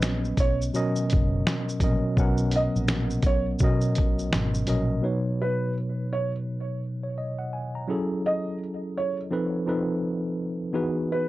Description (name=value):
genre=lo-fi hip hop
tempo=84 BPM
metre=4/4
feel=swing 61% on 16ths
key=B major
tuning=A4 = 440 Hz
part: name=mellow tine electric piano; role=accompaniment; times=0.0-11.3 s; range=B2 to A#5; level=-26 LUFS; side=equal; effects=medium stereo tremolo, cassette tape, low-pass filter
part: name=vintage muted fingered electric bass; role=bass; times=0.0-5.0 s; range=F#1 to B2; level=-27 LUFS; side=equal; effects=none
part: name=lo-fi sampler-style drum kit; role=drums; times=0.0-4.9 s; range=hi-hat, kick drum, shaker, snare drum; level=-25 LUFS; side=equal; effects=none
part: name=felt-muted upright piano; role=melody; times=0.4-11.3 s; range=B4 to D#5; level=-29 LUFS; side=right 2 dB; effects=low-pass filter, analog delay
room=little or no reverb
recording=dry, gritty hardware recording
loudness=-24 LUFS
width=side -17 dB against mid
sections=0.0-5.0 A section; 5.0-11.3 B section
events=none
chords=0.0 Bmaj9; 5.0 Badd9; 7.9 F#m7; 9.3 F7#11; 10.7 Emaj9